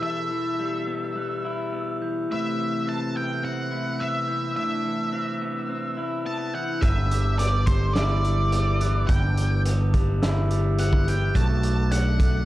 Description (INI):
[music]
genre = post-rock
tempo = 106 BPM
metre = 4/4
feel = straight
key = unclear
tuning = A4 = 442 Hz
[part]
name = octave-fuzz lead guitar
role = melody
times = 0.0-12.4 s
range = C5 to A5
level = -29 LUFS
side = equal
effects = distortion, slapback echo
[part]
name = pedal steel guitar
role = sustained chords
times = 0.0-12.4 s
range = B2 to B4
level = -33 LUFS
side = right 1 dB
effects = wide subtle chorus
[part]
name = electric guitar through a small old amp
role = arpeggios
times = 0.0-12.4 s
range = E2 to E4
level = -30 LUFS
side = left 2 dB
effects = slapback echo
[part]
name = glockenspiel with rubber mallets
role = arpeggios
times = 0.0-12.4 s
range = D6 to G6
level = -38 LUFS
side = right 4 dB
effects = slapback echo
[part]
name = growling picked electric bass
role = bass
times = 6.8-12.4 s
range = G1 to B1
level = -22 LUFS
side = equal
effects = overdrive
[part]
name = loose indie drum kit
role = drums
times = 6.8-12.3 s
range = hi-hat, kick drum, snare drum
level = -25 LUFS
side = equal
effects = none
[sound]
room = moderate spring reverb, RT60 2.6 s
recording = dark, warm production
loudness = -22 LUFS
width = side -15 dB against mid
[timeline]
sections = 0.0-6.8 A section; 6.8-12.4 B section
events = none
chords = 0.0 Em; 2.3 Amadd9; 6.8 G6; 11.3 Bm7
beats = | 0.03 0.59 1.16 1.73 | 2.29 2.86 3.43 4.00 | 4.56 5.13 5.70 6.26 | 6.83 7.39 7.96 8.52 | 9.09 9.65 10.22 10.79 | 11.35 11.91